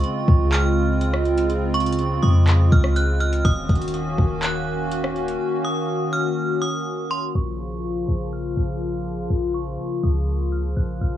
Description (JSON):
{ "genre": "hip hop, atmospheric cloud-rap", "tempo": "123 BPM", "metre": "4/4", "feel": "half-time", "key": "Bb minor", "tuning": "A4 = 439 Hz", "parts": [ { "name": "metallic FM bell", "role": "melody", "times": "0.0-11.2 s", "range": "C6 to Gb6", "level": "-29 LUFS", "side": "right 3 dB", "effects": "chorus, digital delay" }, { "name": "hollow soft pad", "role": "sustained chords", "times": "0.0-11.2 s", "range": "Db3 to Gb4", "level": "-24 LUFS", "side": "equal", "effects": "chorus, sidechain pumping" }, { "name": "clean 808-style bass", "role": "bass", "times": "0.0-11.2 s", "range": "Eb1 to F2", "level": "-22 LUFS", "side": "equal", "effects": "none" }, { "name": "smooth R&B drum kit", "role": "drums", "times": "0.0-5.4 s", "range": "handclaps, hi-hat, kick drum, rim click", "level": "-22 LUFS", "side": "equal", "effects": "overdrive" } ], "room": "digital ambience", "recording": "worn, warbling old tape, cassette tape, warbly pitch drift, low-pass filter, small room ambience", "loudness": "-19 LUFS", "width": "side -12 dB against mid", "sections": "0.0-7.4 A section; 7.4-11.2 B section", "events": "drums muted 5.4-7.4; filter sweep 7.4-11.2", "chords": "0.0 Dbmaj7; 3.5 Ebm7; 7.4 Bbm" }